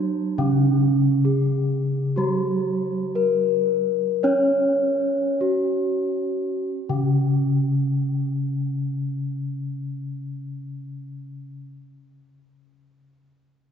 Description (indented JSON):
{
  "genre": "gamelan",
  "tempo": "44-74 BPM",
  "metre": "4/4",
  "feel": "straight",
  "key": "C# pelog barang",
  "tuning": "A4 = 441 Hz",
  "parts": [
    { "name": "gamelan-type bronze metallophone", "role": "melody", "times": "0.0-11.7 s", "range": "C#4 to C#5", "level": "-23 LUFS", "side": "equal", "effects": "none" },
    { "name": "gamelan-type bronze metallophone", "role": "accompaniment", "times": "0.0-11.7 s", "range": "C#3 to C#4", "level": "-24 LUFS", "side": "left 2 dB", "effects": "none" }
  ],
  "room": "wet church reverb, RT60 3.5 s",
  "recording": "recorded in a church or concert hall, nothing above 7.7 kHz",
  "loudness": "-20 LUFS",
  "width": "side -7 dB against mid",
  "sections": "0.0-6.7 A section; 6.7-12.1 B section",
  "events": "slowing down 0.0-6.7",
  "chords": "none",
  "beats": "0.39 1.25 | 2.17 3.17 4.24 5.41 | 6.69 8.04 9.39 10.73"
}